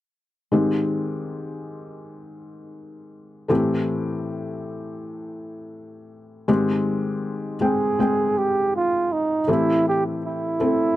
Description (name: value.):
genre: pop ballad.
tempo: 80 BPM.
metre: 4/4.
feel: straight.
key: unclear.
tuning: A4 = 440 Hz.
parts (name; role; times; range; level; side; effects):
felt-muted upright piano; accompaniment; 0.5-11.0 s; Ab2 to G5; -23 LUFS; left 2 dB; none.
breathy flugelhorn; melody; 7.6-11.0 s; Eb4 to Ab4; -21 LUFS; right 3 dB; none.
room: little or no reverb.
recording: dry, close 1970s-style studio recording.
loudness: -20 LUFS.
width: side -14 dB against mid.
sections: 0.5-6.5 A section; 6.5-11.0 B section.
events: none.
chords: 0.5 Abmaj7; 3.5 Am7; 6.5 Abmaj7; 9.5 Am7.